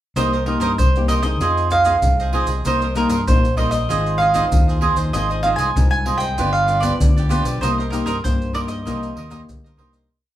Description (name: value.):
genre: samba and choro.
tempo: 96 BPM.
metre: 4/4.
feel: straight.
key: C minor.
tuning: A4 = 441 Hz.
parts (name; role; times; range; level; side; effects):
mandolin; melody; 0.2-9.7 s; Bb4 to Ab5; -21 LUFS; right 2 dB; none.
cavaquinho; accompaniment; 0.2-10.1 s; Eb4 to Eb5; -23 LUFS; right 5 dB; none.
nylon-string guitar; accompaniment; 0.2-10.1 s; G2 to Ab4; -26 LUFS; left 4 dB; none.
fingered electric bass; bass; 0.2-10.1 s; G1 to G2; -23 LUFS; equal; none.
maracas, surdo and pandeiro; percussion; 0.2-10.1 s; none; -21 LUFS; equal; none.
room: wet studio reverb, RT60 0.5 s.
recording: band playing live in one room.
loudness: -16 LUFS.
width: side -13 dB against mid.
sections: 0.2-10.1 A section.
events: fade-out 7.6-10.1.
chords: 0.2 Cm7; 1.4 Fm7; 2.7 Cm7; 3.9 Ab6; 6.4 G7; 7.6 Cm7.